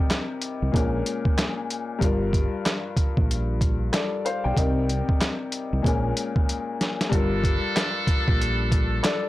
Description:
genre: hip hop, boom-bap hip-hop.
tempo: 94 BPM.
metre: 4/4.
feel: swing 62% on 16ths.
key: G minor.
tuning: A4 = 441 Hz.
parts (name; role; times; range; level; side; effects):
clear upright piano; accompaniment; 0.0-9.3 s; G2 to G5; -28 LUFS; left 4 dB; high-pass filter, low-pass filter.
boom bap sampler-style drum kit; drums; 0.1-9.2 s; handclaps, hi-hat, kick drum, snare drum; -23 LUFS; equal; none.
fingered electric bass; bass; 0.6-9.0 s; G1 to C2; -26 LUFS; right 1 dB; tube saturation.
muted trumpet section; stabs; 7.1-9.3 s; D4 to A4; -28 LUFS; right 1 dB; high-pass filter, low-pass filter, tape echo.
room: little or no reverb.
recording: blown-out, overdriven recording, overdrive.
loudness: -22 LUFS.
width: side -16 dB against mid.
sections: 0.0-7.1 A section; 7.1-9.3 B section.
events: drum fill 6.5-7.1.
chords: 0.0 Cm7; 0.7 Bbm7; 2.0 Gm7; 4.6 Cm7; 5.8 Bbm7; 7.1 Gm7.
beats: 0.10 0.74 1.37 | 2.01 2.65 3.29 3.93 | 4.57 5.20 5.84 6.48 | 7.12 7.76 8.40 9.03.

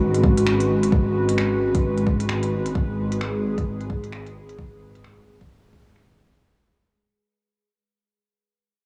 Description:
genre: future garage.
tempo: 131 BPM.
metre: 4/4.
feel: swing 60% on 16ths.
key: G# minor.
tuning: A4 = 439 Hz.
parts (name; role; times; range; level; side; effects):
muted felt-like synth keys; accompaniment; 0.0-2.8 s; C#4; -35 LUFS; equal; none.
airy breathy pad; sustained chords; 0.0-6.4 s; G#3 to B4; -26 LUFS; equal; chorus, sidechain pumping.
dark detuned saw bass; bass; 0.0-6.4 s; G#1; -28 LUFS; equal; tube saturation, sidechain pumping.
organic electronic drum kit; drums; 0.1-6.4 s; finger snaps, hi-hat; -34 LUFS; equal; low-pass filter on hats, vintage 12-bit sampler grit, low-pass filter on snare, low-pass filter on perc, low-pass filter on room.
electronic kick drum; drums; 0.2-5.8 s; none; -25 LUFS; equal; overdrive, vintage 12-bit sampler grit.
room: moderate huge ambient reverb, RT60 7.7 s.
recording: cassette tape, small room ambience.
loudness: -22 LUFS.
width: mono.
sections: 0.0-6.4 A section.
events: fade-out 0.0-6.4.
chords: 0.0 G#m7.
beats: 0.00 0.46 | 0.92 1.38 1.83 2.29 | 2.75 3.21 3.67 4.12 | 4.58 5.04 5.50 5.96.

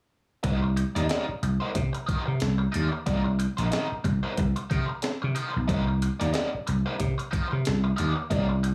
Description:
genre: funk.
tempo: 92 BPM.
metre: 4/4.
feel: swing 56% on 16ths.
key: C minor.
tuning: A4 = 442 Hz.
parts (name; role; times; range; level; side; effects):
biting overdriven guitar; accompaniment; 0.4-8.7 s; Eb4 to D5; -34 LUFS; equal; wah, plate reverb.
vintage slap bass; bass; 0.4-8.7 s; Bb1 to C3; -28 LUFS; equal; none.
breakbeat sampler-style drum kit; drums; 0.4-8.7 s; hi-hat, kick drum, snare drum; -33 LUFS; equal; none.
room: light reverb.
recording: studio reverb.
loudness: -27 LUFS.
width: mono.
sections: 0.4-8.7 A section.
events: none.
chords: 0.4 Cm7.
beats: | 0.44 1.10 1.75 2.41 | 3.07 3.72 4.38 5.03 | 5.69 6.34 7.00 7.65 | 8.31.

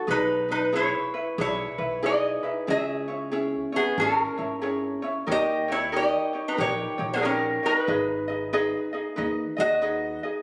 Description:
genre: Hawaiian.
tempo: 92 BPM.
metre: 4/4.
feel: swing 63% on 8ths.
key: G# minor.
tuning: A4 = 440 Hz.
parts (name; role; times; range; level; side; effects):
ukulele; accompaniment; 0.0-10.4 s; C#4 to D#5; -30 LUFS; equal; none.
lap resonator guitar; melody; 0.1-10.2 s; B3 to E5; -27 LUFS; equal; none.
upright bass; bass; 0.1-10.2 s; G#1 to D#2; -40 LUFS; equal; none.
room: wet recital hall reverb, RT60 1.3 s.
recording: recorded on a phone in the room, studio ambience.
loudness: -26 LUFS.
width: mono.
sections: 0.0-10.4 A section.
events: none.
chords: 0.1 Emaj7/B; 2.7 C#m; 5.3 D#7; 7.9 G#m.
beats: | 0.08 0.73 1.38 2.03 | 2.68 3.33 3.98 4.63 | 5.28 5.93 6.58 7.23 | 7.88 8.53 9.18 9.83.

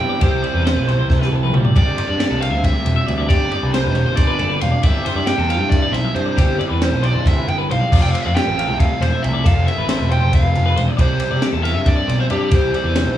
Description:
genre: math rock and midwest emo.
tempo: 273 BPM (eighths).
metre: 7/8.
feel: straight.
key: C major.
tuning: A4 = 440 Hz.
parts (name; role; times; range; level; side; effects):
crunchy overdriven guitar; melody; 0.0-13.2 s; G4 to G5; -23 LUFS; right 2 dB; slapback echo.
twelve-string electric guitar; accompaniment; 0.0-3.3 s; G2 to E4; -29 LUFS; right 8 dB; none.
twelve-string electric guitar; arpeggios; 0.0-13.2 s; G4 to F5; -25 LUFS; left 4 dB; none.
biting overdriven guitar; riff; 0.0-13.2 s; C3 to G4; -25 LUFS; right 1 dB; none.
fuzz picked electric bass; bass; 0.0-13.2 s; E1 to C3; -19 LUFS; equal; overdrive.
compact cocktail drum kit; drums; 0.2-13.1 s; crash cymbal, kick drum, ride cymbal, snare drum, toms; -19 LUFS; equal; none.
room: light reverb.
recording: small room ambience.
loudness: -15 LUFS.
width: side -12 dB against mid.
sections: 0.0-1.8 A section; 1.8-13.2 B section.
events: drum fill 1.1-1.8.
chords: 0.0 Cmaj7; 1.8 Gsus4; 4.8 Cmaj7/G; 7.9 Fmaj7; 11.0 Cmaj7.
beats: 0.00 | 0.22 0.44 0.66 0.88 1.10 1.32 1.54 | 1.76 1.98 2.20 2.42 2.64 2.86 3.08 | 3.30 3.52 3.74 3.96 4.18 4.40 4.62 | 4.84 5.06 5.28 5.50 5.72 5.94 6.16 | 6.38 6.60 6.82 7.04 7.26 7.48 7.70 | 7.91 8.13 8.35 8.57 8.79 9.01 9.23 | 9.45 9.67 9.89 10.11 10.32 10.54 10.76 | 10.98 11.20 11.42 11.64 11.86 12.08 12.30 | 12.52 12.74 12.96 13.18.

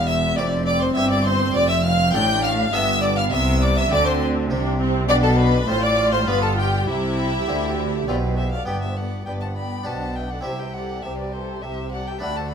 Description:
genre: classical, baroque-style concerto movement with solo episodes.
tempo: 101 BPM.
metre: 3/4.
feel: straight.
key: C major.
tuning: A4 = 440 Hz.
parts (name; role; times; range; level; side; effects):
rich chamber violin section; melody; 0.0-12.5 s; E4 to G6; -28 LUFS; left 1 dB; none.
warm violin; melody; 0.0-12.5 s; E4 to B5; -26 LUFS; left 2 dB; none.
rich chamber violin section; second line; 0.0-12.5 s; E4 to G5; -27 LUFS; equal; none.
harpsichord; accompaniment; 0.0-12.5 s; E2 to A4; -31 LUFS; right 1 dB; none.
rich studio viola section; accompaniment; 0.0-12.5 s; B3 to G4; -28 LUFS; right 2 dB; none.
rich chamber double bass section; bass; 0.0-12.5 s; E1 to D2; -25 LUFS; right 2 dB; none.
warm chamber cello section; bass; 0.0-12.5 s; E2 to D3; -26 LUFS; left 1 dB; none.
room: moderate stone room reverb, RT60 1.2 s.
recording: none.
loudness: -18 LUFS.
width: side -7 dB against mid.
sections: 0.0-8.7 A section; 8.7-12.5 B section.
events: none.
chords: 0.0 C/E; 1.6 Dm/F; 2.7 G; 3.3 C5; 5.1 G/B; 5.7 F/A; 6.3 G7; 6.9 C; 8.7 G; 9.9 G/B; 10.5 C.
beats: 0.37 0.97 | 1.56 2.15 2.73 | 3.32 3.91 4.50 | 5.09 5.68 6.28 | 6.88 7.48 8.08 | 8.68 9.27 9.87 | 10.46 11.05 11.64 | 12.24.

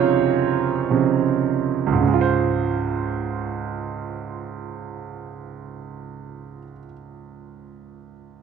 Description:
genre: pop.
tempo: 52 BPM (dotted quarters).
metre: 6/8.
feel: straight.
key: Db major.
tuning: A4 = 439 Hz.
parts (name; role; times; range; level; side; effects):
bright concert grand piano; accompaniment; 0.0-8.4 s; Db2 to Db5; -22 LUFS; right 7 dB; none.
room: small room ambience.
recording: 1960s-style stereo.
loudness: -19 LUFS.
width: side -6 dB against mid.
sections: 0.0-2.0 A section; 2.0-6.7 B section.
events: slowing down 0.0-2.0; grand piano solo 0.0-2.0.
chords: 0.0 Dbmaj7.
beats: 0.90 | 2.03 3.19 | 4.35 5.51.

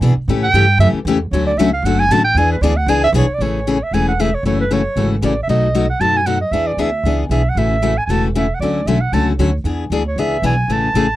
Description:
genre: acoustic string swing (jazz manouche).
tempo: 230 BPM.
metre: 4/4.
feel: swing 57% on 8ths.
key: A major.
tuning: A4 = 441 Hz.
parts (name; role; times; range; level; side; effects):
picked steel-string acoustic guitar; accompaniment; 0.0-11.1 s; B2 to G#4; -18 LUFS; left 4 dB; none.
upright bass; bass; 0.0-11.2 s; E1 to B2; -18 LUFS; right 1 dB; none.
breathy clarinet; melody; 0.4-11.2 s; B4 to A5; -18 LUFS; right 2 dB; none.
room: light reverb.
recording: dry, close 1970s-style studio recording.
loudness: -14 LUFS.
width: side -15 dB against mid.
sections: 0.0-3.4 A section; 3.4-11.2 B section.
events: clarinet solo 0.0-3.4.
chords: 0.3 A7; 1.3 Dmaj7; 2.4 E7; 3.4 Amaj7; 4.4 F#m7; 5.5 B7; 6.5 E7; 7.6 A6; 8.6 Dmaj7; 9.6 E7.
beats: 0.02 | 0.28 0.54 0.80 1.06 | 1.32 1.58 1.84 2.10 | 2.36 2.62 2.88 3.14 | 3.40 3.66 3.92 4.18 | 4.44 4.70 4.96 5.22 | 5.48 5.74 6.00 6.26 | 6.52 6.78 7.04 7.30 | 7.56 7.83 8.09 8.35 | 8.61 8.87 9.13 9.39 | 9.65 9.91 10.17 10.43 | 10.69 10.95.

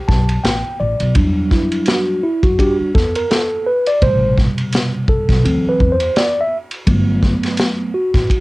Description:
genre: hip hop, jazz-hop.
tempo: 84 BPM.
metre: 4/4.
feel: swing 57% on 16ths.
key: E minor.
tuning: A4 = 440 Hz.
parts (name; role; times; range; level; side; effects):
mellow tine electric piano; accompaniment; 0.1-8.4 s; B2 to A5; -17 LUFS; equal; slow stereo tremolo, cassette tape.
upright bass; bass; 0.1-8.3 s; G1 to F#2; -19 LUFS; equal; none.
vintage drum kit; drums; 0.1-8.4 s; hi-hat, kick drum, ride cymbal, snare drum; -17 LUFS; equal; cassette tape.
room: light reverb.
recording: home recording on cassette.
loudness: -13 LUFS.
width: side -21 dB against mid.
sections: 0.0-1.2 A section; 1.2-8.4 B section.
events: tine electric piano fill 0.0-1.2; tine electric piano solo 1.2-8.4.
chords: 0.0 Bm7b13; 1.2 Em7; 4.0 Am9; 5.4 D9; 6.9 Gmaj9.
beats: 0.45 | 1.16 1.88 2.59 3.30 | 4.02 4.73 5.45 6.16 | 6.88 7.59 8.30.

